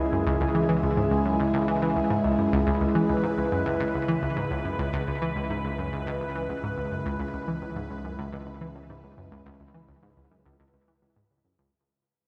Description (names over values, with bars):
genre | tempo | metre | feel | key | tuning
ambient, sequencer-driven space music | 106 BPM | 4/4 | straight | unclear | A4 = 441 Hz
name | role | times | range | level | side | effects
phased analog pad | sustained chords | 0.0-11.7 s | C#3 to B4 | -30 LUFS | equal | phaser, chorus, shimmer reverb
analog pluck | riff | 0.0-11.7 s | C#2 to E3 | -31 LUFS | equal | chorus, delay, shimmer reverb
fat analog bass | bass | 0.0-11.7 s | C#2 | -40 LUFS | equal | none
room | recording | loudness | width
wet cathedral reverb, RT60 5.7 s | in a vast, echoing space | -27 LUFS | mono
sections
0.0-11.7 A section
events
fade-out 2.7-11.7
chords
0.0 C#m